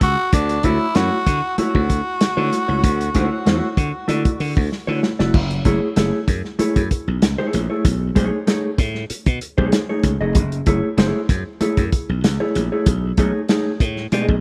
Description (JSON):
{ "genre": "funk", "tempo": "96 BPM", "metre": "4/4", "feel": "straight", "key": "F# minor", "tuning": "A4 = 440 Hz", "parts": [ { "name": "raspy tenor saxophone", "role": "melody", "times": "0.0-4.7 s", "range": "D4 to F#4", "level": "-24 LUFS", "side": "equal", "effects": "tape echo" }, { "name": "slap bass", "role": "bass", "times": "0.0-14.4 s", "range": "E#1 to D3", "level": "-24 LUFS", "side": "equal", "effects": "tube saturation" }, { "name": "warm soul drum kit", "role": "drums", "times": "0.0-14.4 s", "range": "crash cymbal, hi-hat, kick drum, snare drum", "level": "-21 LUFS", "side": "equal", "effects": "none" }, { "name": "mellow electric guitar", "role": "accompaniment", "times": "0.6-14.3 s", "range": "A3 to D#5", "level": "-24 LUFS", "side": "equal", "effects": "spring reverb" } ], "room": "light reverb, small room ambience", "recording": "rough home demo mix, vinyl crackle", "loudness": "-19 LUFS", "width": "mono", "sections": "0.0-5.3 A section; 5.3-14.4 B section", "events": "drum fill 4.7-5.3", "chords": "0.0 Dmaj9; 5.3 F#m9; 7.8 B13; 10.4 F#m9; 12.9 B13" }